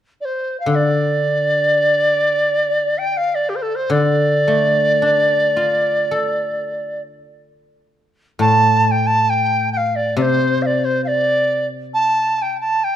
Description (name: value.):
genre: chinese traditional, Chinese chamber ensemble.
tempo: free time.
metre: none.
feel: none.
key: D yu mode.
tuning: A4 = 440 Hz.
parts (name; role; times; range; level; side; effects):
bright reedy large dizi; melody; 0.2-13.0 s; G4 to A5; -16 LUFS; right 1 dB; none.
guzheng; accompaniment; 0.7-12.8 s; A2 to A4; -20 LUFS; left 2 dB; none.
room: light reverb.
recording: dark, warm production.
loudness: -15 LUFS.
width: side -11 dB against mid.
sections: 0.0-8.4 A section; 8.4-13.0 B section.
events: none.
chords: none.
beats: free time.